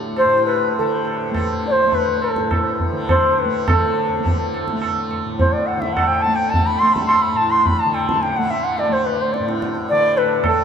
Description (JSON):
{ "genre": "indian classical, Hindustani", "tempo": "105 BPM", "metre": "4/4", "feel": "straight", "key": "A raga bageshri", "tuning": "A4 = 444 Hz", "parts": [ { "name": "tanpura", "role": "drone", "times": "0.0-10.6 s", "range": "A2 to A3", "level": "-25 LUFS", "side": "equal", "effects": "stereo widening" }, { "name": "bright reedy bansuri", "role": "melody", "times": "0.2-10.6 s", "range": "A4 to C6", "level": "-18 LUFS", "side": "left 1 dB", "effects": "none" }, { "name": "tabla", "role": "percussion", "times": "0.2-10.6 s", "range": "none", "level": "-22 LUFS", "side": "right 2 dB", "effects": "none" } ], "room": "wet cathedral reverb, RT60 6.4 s", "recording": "in a vast, echoing space", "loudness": "-16 LUFS", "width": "side -7 dB against mid", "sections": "0.0-3.7 A section; 3.7-10.6 B section", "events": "speeding up 0.0-10.6", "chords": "none", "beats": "0.17 0.76 | 1.35 1.93 2.51 3.09 | 3.67 4.25 4.82 5.39 | 5.96 6.53 7.10 7.67 | 8.23 8.79 9.35 9.90 | 10.46" }